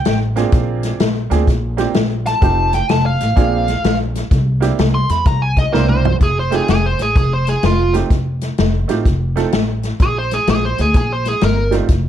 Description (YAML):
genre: electric blues shuffle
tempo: 127 BPM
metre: 4/4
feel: swing 65% on 8ths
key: F mixolydian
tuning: A4 = 441 Hz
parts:
  - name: smooth overdriven lead guitar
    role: melody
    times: 0.0-11.7 s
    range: F4 to C6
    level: -19 LUFS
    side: right 1 dB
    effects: none
  - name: upright bass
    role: bass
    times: 0.1-12.1 s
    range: F1 to E2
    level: -18 LUFS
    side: equal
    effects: none
  - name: swinging big-band drum kit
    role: drums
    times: 0.1-12.0 s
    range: hi-hat, kick drum, snare drum, toms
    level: -17 LUFS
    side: left 1 dB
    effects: none
  - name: bright upright piano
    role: accompaniment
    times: 0.4-11.9 s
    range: G3 to Bb4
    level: -20 LUFS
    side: right 8 dB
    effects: none
room: small room ambience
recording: none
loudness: -13 LUFS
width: side -10 dB against mid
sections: 0.0-6.2 A section; 6.2-12.1 B section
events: lead electric guitar solo 0.0-6.2; drum fill 5.7-6.2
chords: 0.0 C7(no3); 0.5 Bb7; 2.4 F7; 3.4 Bb7; 4.3 C7; 6.2 F7; 10.0 N.C.